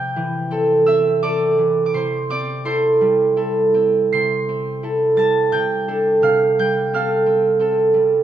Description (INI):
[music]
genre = classical, solo harp piece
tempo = 76-89 BPM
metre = 3/4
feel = rubato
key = C major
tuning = A4 = 441 Hz
[part]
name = concert harp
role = solo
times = 0.0-8.2 s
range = C3 to C7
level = -15 LUFS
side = right 2 dB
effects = none
[sound]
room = wet recital hall reverb, RT60 1.5 s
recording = minimal, uncompressed stereo recording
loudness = -15 LUFS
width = side -10 dB against mid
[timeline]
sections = 0.0-8.2 A section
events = none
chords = 0.0 C6; 6.2 Fadd9/C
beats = 0.50 1.21 | 1.93 2.63 3.34 | 4.10 4.80 5.50 | 6.22 6.91 7.59